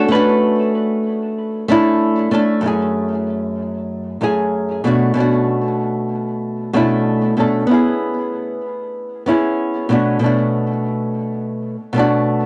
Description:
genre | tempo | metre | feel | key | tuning
chillout | 95 BPM | 4/4 | straight | B dorian | A4 = 440 Hz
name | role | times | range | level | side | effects
semi-hollow electric guitar | melody | 0.0-0.7 s | A4 to B4 | -22 LUFS | equal | cassette tape, analog delay
nylon-string guitar | accompaniment | 0.0-12.5 s | F#2 to A4 | -18 LUFS | equal | cassette tape, tape echo
room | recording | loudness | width
wet studio reverb, RT60 0.5 s | home recording on cassette | -18 LUFS | mono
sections
0.0-2.6 A section; 2.6-12.5 B section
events
none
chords
0.0 Bm7; 2.6 F#m; 4.9 Bm7; 7.7 C#m7; 9.9 Bm7

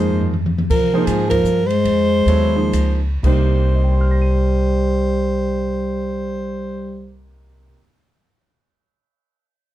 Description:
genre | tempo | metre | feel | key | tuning
modal jazz | 114-163 BPM | 3/4 | swing 64% on 8ths | C minor | A4 = 440 Hz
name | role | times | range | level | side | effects
warm soprano saxophone | melody | 0.0-7.2 s | Ab4 to C5 | -22 LUFS | right 3 dB | none
breathy trombone | second line | 0.0-7.2 s | F3 to Ab3 | -21 LUFS | left 3 dB | none
warm grand piano | accompaniment | 0.0-8.1 s | C3 to Eb7 | -23 LUFS | right 4 dB | none
upright bass | bass | 0.0-7.7 s | C2 to C3 | -19 LUFS | equal | none
open jazz drum kit | drums | 0.1-3.4 s | crash cymbal, hi-hat, kick drum, ride cymbal, toms | -25 LUFS | equal | none
room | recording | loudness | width
moderate club reverb, RT60 0.5 s | dark, warm production | -15 LUFS | side -13 dB against mid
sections
0.7-3.2 A section; 3.2-6.4 B section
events
drum fill 0.0-0.7; slowing down 0.7-3.2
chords
0.0 Fm7; 3.2 Cm7

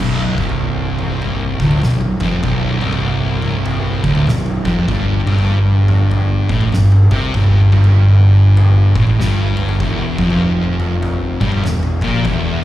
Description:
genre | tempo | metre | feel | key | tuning
stoner and doom metal | 98 BPM | 4/4 | swing 62% on 8ths | B phrygian | A4 = 440 Hz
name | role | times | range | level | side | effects
thick fuzz guitar | riff | 0.0-12.6 s | B1 to C3 | -16 LUFS | left 2 dB | distortion
thick fuzz guitar | riff | 0.0-12.6 s | B1 to C3 | -17 LUFS | right 3 dB | distortion
fuzz picked electric bass | bass | 0.0-12.6 s | B0 to C2 | -20 LUFS | equal | overdrive
oversized low-tuned drum kit | drums | 0.0-12.4 s | crash cymbal, kick drum, snare drum, toms | -23 LUFS | equal | none
room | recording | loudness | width
little or no reverb | live gig heard through the venue's PA, club reverb | -12 LUFS | side -14 dB against mid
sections
0.0-12.6 A section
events
drum fill 9.2-9.8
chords
0.0 Bm; 4.9 Gsus24; 9.8 Gm7

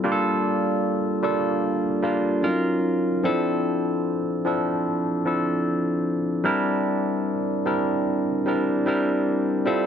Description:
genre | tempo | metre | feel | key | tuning
soul | 75 BPM | 4/4 | straight | unclear | A4 = 435 Hz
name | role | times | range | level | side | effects
barky tine electric piano | solo | 0.0-9.9 s | F3 to Bb4 | -21 LUFS | equal | overdrive, phaser
room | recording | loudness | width
light reverb | none | -21 LUFS | side -8 dB against mid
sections
0.0-9.9 A section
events
none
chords
0.0 Gm7; 2.5 Ebm7; 3.3 Dm7; 6.5 C7

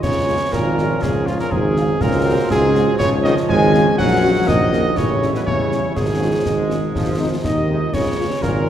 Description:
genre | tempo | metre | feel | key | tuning
military-style march for wind band | 122 BPM | 2/4 | straight | Db major | A4 = 440 Hz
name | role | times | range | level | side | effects
mellow cornet | melody | 0.0-8.7 s | F4 to Ab5 | -23 LUFS | equal | none
mellow woodwind section | second line | 0.0-8.7 s | F4 to Ab5 | -25 LUFS | left 1 dB | none
warm euphonium | second line | 0.0-8.7 s | F2 to Ab3 | -23 LUFS | right 2 dB | none
bright trombone section | sustained chords | 0.0-8.7 s | C3 to E4 | -26 LUFS | equal | none
mellow tuba | bass | 0.0-8.7 s | Ab1 to E2 | -20 LUFS | right 1 dB | none
concert snare drum, clash cymbals and concert bass drum | drums | 0.0-8.6 s | none | -25 LUFS | left 1 dB | none
mellow French horn section | accompaniment | 0.3-8.7 s | G3 to Gb4 | -28 LUFS | left 3 dB | none
room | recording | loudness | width
wet concert hall reverb, RT60 2.1 s | heard from further back in the room | -15 LUFS | side -10 dB against mid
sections
0.0-8.7 A section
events
none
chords
0.0 Db; 2.0 Ab7/Db; 3.0 Db; 4.0 Gb/Bb; 5.0 A7; 6.0 Db/Ab; 6.9 Ab; 7.9 Db

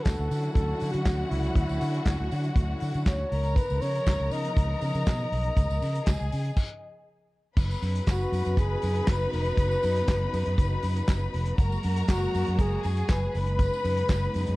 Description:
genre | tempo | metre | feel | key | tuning
disco | 120 BPM | 4/4 | straight | unclear | A4 = 440 Hz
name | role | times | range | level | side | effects
breathy flugelhorn | melody | 0.0-14.6 s | E4 to D#5 | -31 LUFS | left 1 dB | plate reverb
clear symphonic string section | second line | 0.0-14.6 s | F#4 to B5 | -35 LUFS | left 3 dB | plate reverb, analog delay
warm symphonic string section | sustained chords | 0.0-14.6 s | C#3 to F#4 | -36 LUFS | equal | none
fingered electric bass | bass | 0.1-14.6 s | E#1 to D3 | -28 LUFS | equal | none
warm soul drum kit | drums | 0.1-14.6 s | crash cymbal, handclaps, hi-hat, kick drum, snare drum | -25 LUFS | equal | none
tambourine | percussion | 0.1-14.6 s | none | -50 LUFS | right 12 dB | none
room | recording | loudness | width
light reverb | dark, warm production | -24 LUFS | side -20 dB against mid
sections
0.0-7.6 A section; 7.6-14.6 B section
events
stop 6.6-7.6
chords
0.0 Dmaj9; 3.3 C#9; 7.6 C#9sus4; 11.6 F#add9; 13.3 B69/F#

